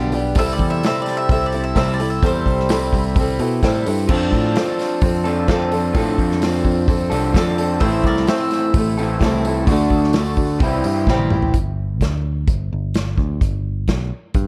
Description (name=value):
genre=folk rock and heartland rock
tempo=129 BPM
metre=4/4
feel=straight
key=C major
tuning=A4 = 440 Hz
part: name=picked acoustic archtop guitar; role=accompaniment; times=0.0-11.6 s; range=G2 to A4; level=-24 LUFS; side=equal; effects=none
part: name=hand-pumped harmonium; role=sustained chords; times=0.0-11.5 s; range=E4 to B5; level=-33 LUFS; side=equal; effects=none
part: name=picked electric bass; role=bass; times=0.0-14.5 s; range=G1 to B2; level=-24 LUFS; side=equal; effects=none
part: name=unplugged drum kit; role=drums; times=0.1-14.5 s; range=crash cymbal, hi-hat, kick drum, snare drum, toms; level=-23 LUFS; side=equal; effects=none
part: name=bowl-back mandolin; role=second line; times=0.4-3.1, 7.8-9.2 s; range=Bb4 to E5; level=-28 LUFS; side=equal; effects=none
part: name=electric guitar through a small old amp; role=riff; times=4.1-11.5 s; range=A2 to A4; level=-25 LUFS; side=equal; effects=spring reverb
room=small room ambience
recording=dark, warm production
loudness=-18 LUFS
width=mono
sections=0.0-11.5 A section; 11.5-14.5 B section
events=drum fill 11.1-11.5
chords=0.4 C6; 4.1 F6; 7.8 Am; 9.7 D; 10.6 C; 11.5 G5